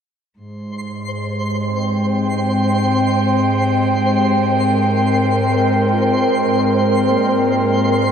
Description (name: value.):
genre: ambient.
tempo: free time.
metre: none.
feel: none.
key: Ab major.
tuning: A4 = 440 Hz.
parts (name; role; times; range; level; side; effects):
overtone-sweeping drone; drone; 1.4-8.1 s; Ab3 to G4; -37 LUFS; left 2 dB; none.
airy breathy pad; sustained chords; 0.4-8.1 s; Ab3 to G5; -17 LUFS; equal; chorus.
warm studio cello section; bass; 0.4-8.1 s; Ab2; -21 LUFS; equal; none.
twinkling granular texture; texture; 0.7-8.1 s; C5 to C6; -21 LUFS; right 2 dB; built-in reverb.
muted felt-like synth keys; arpeggios; 4.2-8.1 s; Bb3 to D5; -30 LUFS; left 1 dB; none.
room: wet echo chamber reverb, RT60 2.3 s.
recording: echo-heavy mix, cassette tape.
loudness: -14 LUFS.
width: side -7 dB against mid.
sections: 0.4-8.1 A section.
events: none.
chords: 0.4 Abmaj9.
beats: free time.